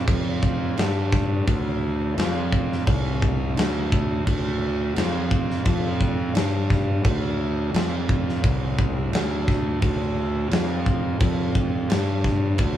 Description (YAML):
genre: stoner and doom metal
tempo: 86 BPM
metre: 4/4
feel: straight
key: D minor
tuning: A4 = 440 Hz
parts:
  - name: fuzz fingered electric bass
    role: bass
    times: 0.0-12.8 s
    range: C2 to G2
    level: -23 LUFS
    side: equal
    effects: overdrive
  - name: big rock drum kit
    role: drums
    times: 0.1-12.8 s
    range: crash cymbal, kick drum, snare drum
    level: -24 LUFS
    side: equal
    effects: none
room: little or no reverb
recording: none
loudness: -20 LUFS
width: side -11 dB against mid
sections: 0.0-12.8 A section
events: none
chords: none